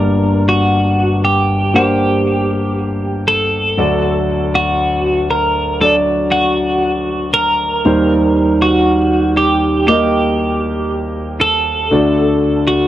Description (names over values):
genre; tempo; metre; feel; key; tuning
pop; 59 BPM; 4/4; straight; G harmonic minor; A4 = 439 Hz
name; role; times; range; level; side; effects
twelve-string electric guitar; melody; 0.0-12.9 s; F#4 to Bb4; -16 LUFS; right 1 dB; tremolo, plate reverb
warm concert grand piano; accompaniment; 0.0-12.9 s; G1 to Eb5; -14 LUFS; equal; none
room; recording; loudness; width
moderate booth ambience, RT60 0.2 s; none; -12 LUFS; side -13 dB against mid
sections
0.0-12.9 A section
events
none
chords
0.0 Gm; 3.8 D; 7.8 Cm7/Eb; 11.9 D